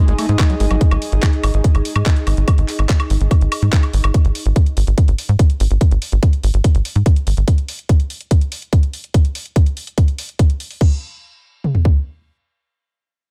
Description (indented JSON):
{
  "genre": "psychedelic trance",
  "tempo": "144 BPM",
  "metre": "4/4",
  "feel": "straight",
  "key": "unclear",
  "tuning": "A4 = 440 Hz",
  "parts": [
    { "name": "overtone-sweeping drone", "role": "sustained chords", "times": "0.0-0.9 s", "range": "G#3 to G#4", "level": "-37 LUFS", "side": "equal", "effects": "chorus, built-in reverb, sidechain pumping" },
    { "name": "screaming distorted acid line", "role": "riff", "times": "0.0-0.8 s", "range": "F#3 to A3", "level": "-28 LUFS", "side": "equal", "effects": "distortion, chorus, sidechain pumping, tape echo" },
    { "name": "airy breathy pad", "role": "texture", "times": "0.0-4.1 s", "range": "D#4 to D#5", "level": "-28 LUFS", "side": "equal", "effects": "chorus, sidechain pumping" },
    { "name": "tight sequencer bass", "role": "bass", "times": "0.1-7.4 s", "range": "G#1 to G#2", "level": "-17 LUFS", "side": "equal", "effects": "tube saturation" },
    { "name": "garage drum kit", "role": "drums", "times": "0.1-10.9 s", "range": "crash cymbal, handclaps, hi-hat, woodblock", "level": "-29 LUFS", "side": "equal", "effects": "studio reverb" },
    { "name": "garage drum kit", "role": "drums", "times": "0.4-11.9 s", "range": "kick drum, toms", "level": "-15 LUFS", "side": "equal", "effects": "studio reverb" }
  ],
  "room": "digital ambience",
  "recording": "none",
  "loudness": "-16 LUFS",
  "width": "mono",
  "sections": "0.0-10.8 A section; 10.8-13.3 B section",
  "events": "filter sweep on analog synth bass 0.0-7.5",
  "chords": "0.0 G#5; 10.8 N.C."
}